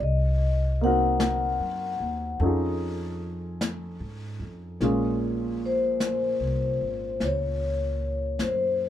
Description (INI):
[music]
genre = jazz ballad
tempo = 50 BPM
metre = 4/4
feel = swing 67% on 8ths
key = Bb minor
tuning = A4 = 440 Hz
[part]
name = vibraphone with soft mallets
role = melody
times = 0.0-8.9 s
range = C5 to Gb5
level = -27 LUFS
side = left 4 dB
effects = none
[part]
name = warm baby grand piano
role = accompaniment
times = 0.0-8.9 s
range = Bb2 to Bb4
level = -29 LUFS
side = right 1 dB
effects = none
[part]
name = upright bass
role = bass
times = 0.0-8.9 s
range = Ab1 to G#2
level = -29 LUFS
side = equal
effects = none
[part]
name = jazz brush drum kit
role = drums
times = 0.0-8.9 s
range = brushed snare drum, hi-hat, snare drum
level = -33 LUFS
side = left 2 dB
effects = none
[sound]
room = moderate club reverb, RT60 0.6 s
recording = minimal, uncompressed stereo recording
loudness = -24 LUFS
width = side -11 dB against mid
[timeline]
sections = 0.0-4.8 A section; 4.8-8.9 B section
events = vibraphone solo 0.0-4.8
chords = 0.0 Cm7b5; 2.4 F7alt; 4.8 Bbm9